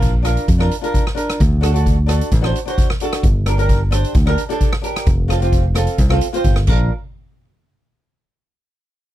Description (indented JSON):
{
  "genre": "calypso",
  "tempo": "131 BPM",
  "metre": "4/4",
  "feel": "straight",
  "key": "Bb major",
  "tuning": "A4 = 442 Hz",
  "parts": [
    { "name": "flamenco guitar", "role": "accompaniment", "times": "0.0-6.9 s", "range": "C4 to C5", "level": "-22 LUFS", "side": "right 1 dB", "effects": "double-tracked left and right" },
    { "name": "fingered electric bass", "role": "bass", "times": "0.0-6.9 s", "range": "F1 to F2", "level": "-16 LUFS", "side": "equal", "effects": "none" },
    { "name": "street-band drum kit", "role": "drums", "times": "0.0-6.8 s", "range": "crash cymbal, hi-hat, kick drum, rim click", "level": "-18 LUFS", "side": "equal", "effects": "none" }
  ],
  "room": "little or no reverb",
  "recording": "dry, close 1970s-style studio recording",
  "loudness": "-14 LUFS",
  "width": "side -13 dB against mid",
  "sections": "0.0-6.9 A section; 6.9-8.7 B section",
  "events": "none",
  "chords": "0.0 Bb; 1.4 D7; 3.2 Gm; 5.1 Fadd9; 6.7 Bb; 6.9 N.C."
}